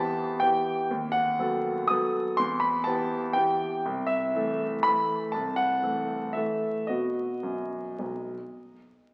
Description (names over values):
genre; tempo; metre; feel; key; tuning
classical, piano waltz; 106-130 BPM; 3/4; rubato; E minor; A4 = 438 Hz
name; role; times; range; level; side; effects
warm grand piano; solo; 0.0-9.1 s; B1 to D#6; -28 LUFS; equal; none
room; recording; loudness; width
wet scoring stage reverb, RT60 1.8 s; very old 78 rpm record, vinyl crackle; -28 LUFS; mono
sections
0.0-9.1 A section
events
none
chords
0.0 Em; 0.9 B7/D#; 2.4 Em; 3.9 Am/C; 6.9 B